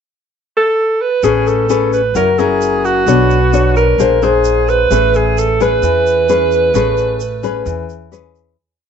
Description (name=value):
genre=bossa nova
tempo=130 BPM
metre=4/4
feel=straight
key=A major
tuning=A4 = 443 Hz
part: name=breathy alto saxophone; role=melody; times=0.6-8.1 s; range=F#4 to B4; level=-14 LUFS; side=right 3 dB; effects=slapback echo
part: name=nylon-string guitar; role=accompaniment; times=1.2-8.6 s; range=E3 to C#5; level=-16 LUFS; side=left 10 dB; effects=none
part: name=upright bass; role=bass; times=1.2-8.5 s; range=F#1 to E2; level=-18 LUFS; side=right 3 dB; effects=none
part: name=tube shaker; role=percussion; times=1.2-8.6 s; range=none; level=-32 LUFS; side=right 17 dB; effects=none
room=light reverb, small room ambience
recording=1960s-style stereo with parts hard left and right, nothing above 7.9 kHz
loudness=-11 LUFS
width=side -7 dB against mid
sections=0.0-1.2 pickup bar; 1.2-8.6 A section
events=fade-out 6.7-8.6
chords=0.0 N.C.; 1.2 Amaj9; 2.1 F#7; 3.1 Bm9; 4.0 Bb9; 4.9 Amaj9